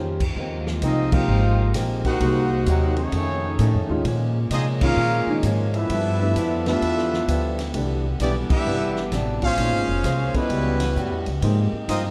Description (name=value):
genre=jazz, big band swing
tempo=130 BPM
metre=4/4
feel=swing 66% on 8ths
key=unclear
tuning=A4 = 439 Hz
part: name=picked acoustic archtop guitar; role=accompaniment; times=0.0-12.1 s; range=F2 to C5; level=-33 LUFS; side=equal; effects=none
part: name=bright saxophone section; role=sustained chords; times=0.0-12.1 s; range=Bb2 to F#4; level=-35 LUFS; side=equal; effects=none
part: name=upright bass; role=bass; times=0.0-12.1 s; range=F1 to C3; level=-26 LUFS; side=equal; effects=none
part: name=vintage drum kit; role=drums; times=0.2-12.0 s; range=crash cymbal, hi-hat, kick drum, ride cymbal, snare drum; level=-32 LUFS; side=equal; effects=none
part: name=clear trumpet section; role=melody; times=0.8-12.0 s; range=G3 to Gb5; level=-30 LUFS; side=equal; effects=none
part: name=warm trombone section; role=second line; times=0.8-12.0 s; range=Eb3 to Gb4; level=-30 LUFS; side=equal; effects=none
part: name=warm upright piano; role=accompaniment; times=1.1-11.7 s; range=Eb3 to Eb5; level=-32 LUFS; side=equal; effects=none
room=moderate concert hall reverb, RT60 2.2 s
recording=dark, warm production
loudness=-22 LUFS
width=mono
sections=0.4-12.1 A section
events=band accent 1.1, 4.7, 8.4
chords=0.4 Ab69; 2.2 Cm7b5; 3.1 F7alt; 4.1 Bbm7; 5.9 G13; 7.7 Cmaj9; 9.6 Bbm9; 10.5 A13; 11.4 Ab69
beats=| 0.36 0.82 1.28 1.75 | 2.21 2.67 3.13 3.59 | 4.05 4.51 4.98 5.44 | 5.90 6.36 6.82 7.28 | 7.74 8.20 8.66 9.12 | 9.58 10.04 10.51 10.96 | 11.43 11.89